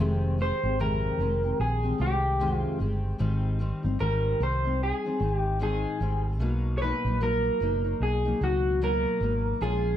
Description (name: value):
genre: indie pop, bedroom pop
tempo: 75 BPM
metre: 4/4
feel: swing 60% on 16ths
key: unclear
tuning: A4 = 440 Hz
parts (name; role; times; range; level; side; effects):
- fingerpicked steel-string acoustic guitar; accompaniment; 0.0-10.0 s; F2 to G4; -31 LUFS; left 3 dB; analog chorus, warbly pitch drift
- vintage muted fingered electric bass; bass; 0.0-10.0 s; F1 to Db2; -28 LUFS; right 1 dB; none
- electric guitar through a small old amp; melody; 0.4-10.0 s; F#4 to Db5; -28 LUFS; equal; wide subtle chorus, slapback echo
room: light reverb, small room reverb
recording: none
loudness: -24 LUFS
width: side -11 dB against mid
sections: 0.0-10.0 A section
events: none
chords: 0.0 Fm9; 3.2 Abmaj7; 6.4 Bmaj7